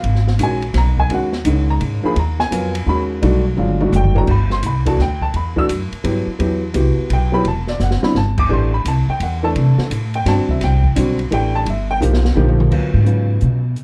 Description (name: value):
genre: modal jazz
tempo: 170 BPM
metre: 3/4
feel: swing 66% on 8ths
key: G# dorian, E minor from 4.3 s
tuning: A4 = 440 Hz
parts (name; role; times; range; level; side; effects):
- warm upright piano; accompaniment; 0.0-13.6 s; C#3 to E6; -22 LUFS; equal; none
- upright bass; bass; 0.0-13.7 s; E1 to C3; -19 LUFS; equal; none
- open jazz drum kit; drums; 0.0-13.8 s; crash cymbal, hi-hat, kick drum, ride cymbal, snare drum, toms; -26 LUFS; equal; none
room: light reverb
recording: dark, warm production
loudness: -17 LUFS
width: mono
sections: 0.0-4.3 A section; 4.3-12.7 A section; 12.7-13.8 A section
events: drum fill 3.6-4.3, 7.8-8.2, 12.0-12.7; upright bass solo 12.7-13.8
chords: 0.0 G#m11; 3.2 B7b13; 4.3 Em9; 8.5 Am9; 11.7 D#; 12.7 G#m11